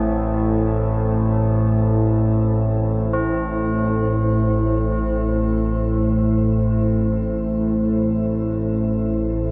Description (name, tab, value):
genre	dark ambient drone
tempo	free time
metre	none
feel	none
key	A harmonic minor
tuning	A4 = 440 Hz
part	dark analog pad	sustained chords	0.0-9.5 s	A3 to C5	-25 LUFS	equal	chorus, shimmer reverb
part	tubular bells	arpeggios	0.0-9.5 s	C4 to G#4	-33 LUFS	equal	delay, shimmer reverb
part	analog drone	drone	0.0-9.5 s	A1 to A2	-22 LUFS	equal	chorus
room	wet cathedral reverb, RT60 5.3 s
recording	in a vast, echoing space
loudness	-20 LUFS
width	mono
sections	0.0-9.5 A section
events	none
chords	0.0 Am